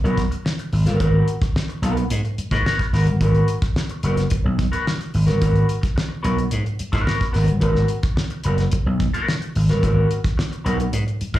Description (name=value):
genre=funk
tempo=109 BPM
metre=4/4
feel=straight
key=G# minor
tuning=A4 = 440 Hz
part: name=electric guitar at the edge of break-up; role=accompaniment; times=0.0-11.4 s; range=B3 to A#4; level=-25 LUFS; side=left 1 dB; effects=wah, slapback echo
part: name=vintage slap bass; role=bass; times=0.0-11.4 s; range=F#1 to G#2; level=-18 LUFS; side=equal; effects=none
part: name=damped 70s drum kit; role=drums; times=0.1-11.4 s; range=hi-hat, kick drum, snare drum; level=-24 LUFS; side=equal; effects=slapback echo
room=light reverb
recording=live gig heard through the venue's PA, club reverb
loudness=-18 LUFS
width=side -14 dB against mid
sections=0.0-11.4 A section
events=none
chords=0.0 G#m9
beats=0.45 | 1.00 1.55 2.10 2.66 | 3.21 3.76 4.31 4.86 | 5.42 5.97 6.52 7.07 | 7.62 8.17 8.73 9.28 | 9.83 10.38 10.93